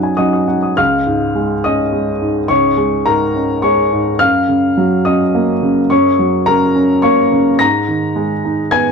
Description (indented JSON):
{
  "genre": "neoclassical minimalist piano",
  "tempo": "106 BPM",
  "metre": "3/4",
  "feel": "rubato",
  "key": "unclear",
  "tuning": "A4 = 440 Hz",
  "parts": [
    { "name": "dark upright piano", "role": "solo", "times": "0.0-8.9 s", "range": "C#2 to A#6", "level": "-12 LUFS", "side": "equal", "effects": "none" }
  ],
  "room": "moderate stone room reverb, RT60 1.1 s",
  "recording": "dark, warm production",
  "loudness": "-12 LUFS",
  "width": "side -5 dB against mid",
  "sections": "0.8-8.9 A section",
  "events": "none",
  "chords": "0.0 D#m7/F#; 0.8 C#sus2; 4.2 F#; 7.6 G#madd9",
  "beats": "0.18 | 0.79 1.36 1.93 | 2.50 3.07 3.64 | 4.21 4.78 5.34 | 5.91 6.47 7.03 | 7.60 8.16 8.73"
}